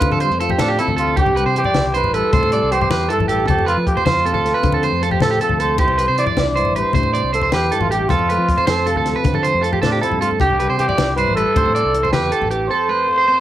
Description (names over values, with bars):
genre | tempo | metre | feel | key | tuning
highlife guitar band | 104 BPM (dotted quarters) | 12/8 | straight | C major | A4 = 438 Hz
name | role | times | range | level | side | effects
growling trumpet | melody | 0.0-13.4 s | D4 to D5 | -19 LUFS | equal | cassette tape, plate reverb
nylon-string guitar | accompaniment | 0.0-13.4 s | F2 to F4 | -26 LUFS | left 6 dB | cassette tape, plate reverb
electric guitar at the edge of break-up | arpeggios | 0.0-13.4 s | G4 to D5 | -20 LUFS | right 5 dB | cassette tape, plate reverb
fingered electric bass | bass | 0.0-12.7 s | A1 to F3 | -23 LUFS | equal | none
compact cocktail drum kit | drums | 0.0-12.6 s | hi-hat, kick drum, snare drum | -23 LUFS | equal | cassette tape
congas | percussion | 0.0-12.7 s | none | -24 LUFS | left 5 dB | none
room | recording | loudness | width
moderate studio reverb, RT60 0.6 s | home recording on cassette | -15 LUFS | side -12 dB against mid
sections
0.0-13.4 A section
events
none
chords
0.0 F; 1.2 Cadd9; 3.5 F; 5.8 Cadd9; 8.1 F; 10.4 Cadd9; 12.7 F